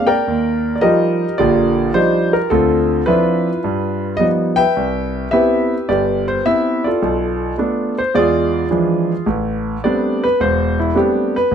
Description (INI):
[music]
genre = solo jazz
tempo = 107 BPM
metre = 4/4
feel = swing 69% on 8ths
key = C major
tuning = A4 = 439 Hz
[part]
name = clear concert grand piano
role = solo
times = 0.0-11.5 s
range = E1 to G5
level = -14 LUFS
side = equal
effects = none
[sound]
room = light reverb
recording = none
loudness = -14 LUFS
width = side -8 dB against mid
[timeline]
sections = 0.0-9.3 A section; 9.3-11.5 B section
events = grand piano solo 9.3-11.5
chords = 0.3 Ebmaj9; 2.5 Dm9; 3.6 Gaug7; 4.8 Cmaj7; 7.0 Bm7b5; 8.1 E7b9; 9.3 Am11